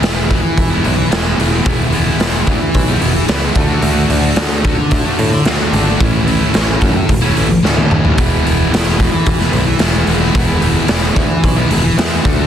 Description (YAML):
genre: quiet-loud alternative rock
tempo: 110 BPM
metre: 4/4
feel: straight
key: E mixolydian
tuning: A4 = 440 Hz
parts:
  - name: thick fuzz guitar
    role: riff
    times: 0.0-12.5 s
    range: A2 to F#4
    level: -15 LUFS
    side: left 1 dB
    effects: distortion
  - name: picked electric bass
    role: bass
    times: 0.0-12.5 s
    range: E1 to A2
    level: -18 LUFS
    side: equal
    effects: none
  - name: raw garage drum kit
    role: drums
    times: 0.0-12.4 s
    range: hi-hat, kick drum, snare drum, toms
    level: -15 LUFS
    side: equal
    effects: none
room: light reverb, small room ambience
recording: dense, heavily limited modern master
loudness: -11 LUFS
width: side -9 dB against mid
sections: 0.0-12.5 A section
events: drum fill 7.6-8.2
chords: 0.0 E; 3.6 D; 6.0 A; 8.2 E